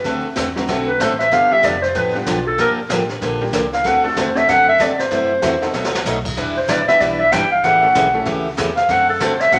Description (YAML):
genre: country, western swing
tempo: 190 BPM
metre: 4/4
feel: swing 63% on 8ths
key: D mixolydian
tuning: A4 = 444 Hz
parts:
  - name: warm clarinet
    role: second line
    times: 0.0-9.6 s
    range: D4 to G5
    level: -18 LUFS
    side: equal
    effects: none
  - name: picked steel-string acoustic guitar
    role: accompaniment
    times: 0.0-9.6 s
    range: B2 to B4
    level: -24 LUFS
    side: equal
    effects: none
  - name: upright bass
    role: bass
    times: 0.0-9.6 s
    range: E1 to A2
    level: -34 LUFS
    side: equal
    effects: none
  - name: jazz brush drum kit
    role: drums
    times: 0.1-9.6 s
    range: brushed snare drum, crash cymbal, hi-hat, kick drum, snare drum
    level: -28 LUFS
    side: equal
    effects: none
  - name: tack piano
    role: accompaniment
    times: 0.6-8.3 s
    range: F#3 to B4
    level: -29 LUFS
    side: equal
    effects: none
room: wet large studio reverb, RT60 1.2 s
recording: none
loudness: -17 LUFS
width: mono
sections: 0.0-9.6 A section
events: clarinet solo 0.0-9.6; drum fill 5.7-6.1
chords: 0.1 D7; 1.3 G7; 2.6 Gm7; 3.8 D7; 5.1 F#m7b5; 5.7 B7b9; 6.4 Em7; 7.6 A7; 8.9 D7